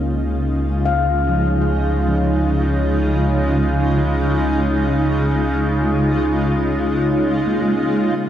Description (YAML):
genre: ambient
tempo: 78 BPM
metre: 4/4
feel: straight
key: Db major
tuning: A4 = 441 Hz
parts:
  - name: granular cloud pad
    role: sustained chords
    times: 0.0-8.3 s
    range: Db3 to F4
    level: -18 LUFS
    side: equal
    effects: built-in reverb, shimmer reverb
  - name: handpan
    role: arpeggios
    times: 0.0-8.3 s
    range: F3 to F5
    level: -25 LUFS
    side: left 2 dB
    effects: diffuse ambient delay, shimmer reverb
  - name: round analog bass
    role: bass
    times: 0.0-8.3 s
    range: Db2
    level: -22 LUFS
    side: equal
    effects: none
  - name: analog drone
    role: drone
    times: 0.0-8.3 s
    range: Db3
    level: -24 LUFS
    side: equal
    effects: chorus
room: wet cathedral reverb, RT60 5.1 s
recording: in a vast, echoing space, cassette tape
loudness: -16 LUFS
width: side -10 dB against mid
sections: 0.0-8.2 A section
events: none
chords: 0.0 Db